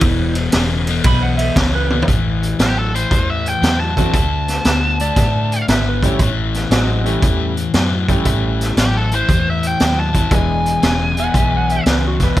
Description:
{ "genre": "electric blues shuffle", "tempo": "117 BPM", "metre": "4/4", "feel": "swing 67% on 8ths", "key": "unclear", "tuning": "A4 = 437 Hz", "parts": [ { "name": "electric slide guitar", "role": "second line", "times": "0.0-6.3, 11.2-12.4 s", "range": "E4 to B5", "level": "-24 LUFS", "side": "right 5 dB", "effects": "none" }, { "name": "crunchy overdriven guitar", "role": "riff", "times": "0.0-12.4 s", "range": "E2 to B3", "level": "-21 LUFS", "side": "left 6 dB", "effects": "none" }, { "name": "vintage muted fingered electric bass", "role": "bass", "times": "0.0-12.4 s", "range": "E1 to A2", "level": "-20 LUFS", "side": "equal", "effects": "none" }, { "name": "raw garage drum kit", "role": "drums", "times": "0.0-12.4 s", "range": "hi-hat, kick drum, ride cymbal, snare drum, toms", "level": "-18 LUFS", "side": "equal", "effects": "none" }, { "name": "biting lead guitar", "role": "melody", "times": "2.6-5.7, 8.8-11.8 s", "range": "G4 to A5", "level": "-21 LUFS", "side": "equal", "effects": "overdrive" }, { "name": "bright upright piano", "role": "accompaniment", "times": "4.0-11.8 s", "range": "F#3 to G#4", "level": "-23 LUFS", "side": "right 2 dB", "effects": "none" } ], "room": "little or no reverb", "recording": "none", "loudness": "-14 LUFS", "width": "side -14 dB against mid", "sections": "0.0-2.1 A section; 2.1-12.4 B section", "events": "electric slide guitar solo 0.0-2.1; drum fill 1.8", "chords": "0.0 E5; 2.1 A5; 4.1 D5; 6.2 A7; 10.3 E7", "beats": "| 0.03 0.54 1.06 1.57 | 2.08 2.60 3.12 3.63 | 4.14 4.66 5.17 5.69 | 6.20 6.72 7.23 7.75 | 8.26 8.78 9.29 9.80 | 10.32 10.83 11.35 11.86 | 12.37" }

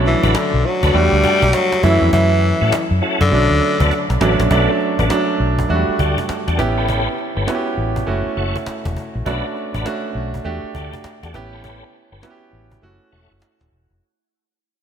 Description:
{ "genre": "R&B, new jack swing", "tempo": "101 BPM", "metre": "4/4", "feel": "swing 63% on 16ths", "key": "B minor", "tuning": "A4 = 439 Hz", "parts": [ { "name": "warm grand piano", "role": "accompaniment", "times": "0.0-14.0 s", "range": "F#3 to G4", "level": "-20 LUFS", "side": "right 3 dB", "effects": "none" }, { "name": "vintage muted fingered electric bass", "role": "bass", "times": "0.0-14.0 s", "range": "D#1 to A2", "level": "-19 LUFS", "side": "left 1 dB", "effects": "none" }, { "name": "raspy tenor saxophone", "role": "melody", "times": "0.1-4.1 s", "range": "D3 to G3", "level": "-18 LUFS", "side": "left 2 dB", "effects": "none" }, { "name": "cajon", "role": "drums", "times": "0.1-14.0 s", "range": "none", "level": "-27 LUFS", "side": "left 1 dB", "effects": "none" }, { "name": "tonewheel organ", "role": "stabs", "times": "0.2-13.3 s", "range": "B3 to C#5", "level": "-25 LUFS", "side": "left 1 dB", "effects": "chorus vibrato, fast rotary speaker" } ], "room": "moderate lush hall reverb, RT60 2.7 s", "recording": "bright 1980s-style digital production", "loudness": "-15 LUFS", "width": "side -8 dB against mid", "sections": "0.0-4.5 A section; 4.5-14.0 B section", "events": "drum fill 3.9-4.5; fade-out 4.5-14.0; break 12.8-14.0", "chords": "0.0 Bm7; 0.9 Em11; 1.8 F#m7; 3.3 Bm7; 5.7 Em11; 6.6 A9; 8.1 F#m7; 9.3 Bm7; 10.4 Em11; 11.3 A9; 12.8 F#m7", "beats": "0.35 0.94 1.54 | 2.13 2.73 3.32 3.91 | 4.51 5.10 5.70 6.29 | 6.88 7.48 8.07 8.66 | 9.26 9.85 10.45 11.04 | 11.64 12.23 12.82 13.42" }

